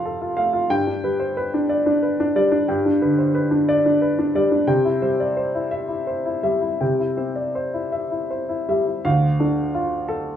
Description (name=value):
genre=neoclassical minimalist piano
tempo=53-62 BPM (dotted quarters)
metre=6/8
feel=rubato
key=unclear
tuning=A4 = 441 Hz
part: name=warm upright piano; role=solo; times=0.0-10.4 s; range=D2 to A5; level=-18 LUFS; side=equal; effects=none
room=wet small room reverb, RT60 0.5 s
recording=heard from further back in the room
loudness=-18 LUFS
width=side -9 dB against mid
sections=0.0-9.0 A section; 9.0-10.4 B section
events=none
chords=0.0 F; 0.7 G; 4.7 C; 9.0 Dm